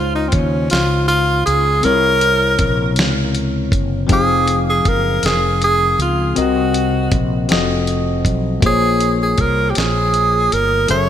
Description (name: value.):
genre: slow six-eight R&B.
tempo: 53 BPM (dotted quarters).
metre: 6/8.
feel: straight.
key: unclear.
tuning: A4 = 440 Hz.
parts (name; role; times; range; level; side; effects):
breathy tenor saxophone; melody; 0.0-11.1 s; C4 to Db5; -16 LUFS; right 1 dB; none.
bell-like tine electric piano; accompaniment; 0.0-11.1 s; C3 to F5; -20 LUFS; left 5 dB; wide subtle chorus.
mellow fretless electric bass; bass; 0.0-11.1 s; F1 to Eb2; -20 LUFS; equal; none.
dusty soul sampler-style drum kit; drums; 0.3-11.1 s; hi-hat, kick drum, snare drum; -19 LUFS; equal; gated reverb.
room: light reverb.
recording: bright 1980s-style digital production.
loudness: -13 LUFS.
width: side -10 dB against mid.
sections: 0.0-11.1 A section.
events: none.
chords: 0.0 Dbmaj9; 1.8 C7b9; 4.1 Fm7; 6.4 Cm7b5; 7.5 F7b9; 8.6 Bbm9.